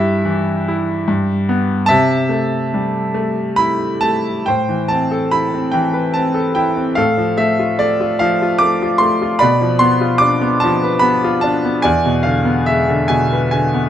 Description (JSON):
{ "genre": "classical, lyrical solo piano", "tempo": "73 BPM", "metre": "3/4", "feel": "rubato", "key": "C major, A minor from 4.5 s", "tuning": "A4 = 440 Hz", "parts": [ { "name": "bright grand piano", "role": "solo", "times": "0.0-13.9 s", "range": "E2 to D6", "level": "-14 LUFS", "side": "equal", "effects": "none" } ], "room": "light reverb", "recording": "close, detailed microphones", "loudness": "-13 LUFS", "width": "side -10 dB against mid", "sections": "0.0-4.5 A section; 4.5-13.9 B section", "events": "none", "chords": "0.0 Em/G; 1.1 G; 1.9 C6; 4.5 Amadd9; 7.0 Dm9/A; 9.4 Bdim; 11.8 E7" }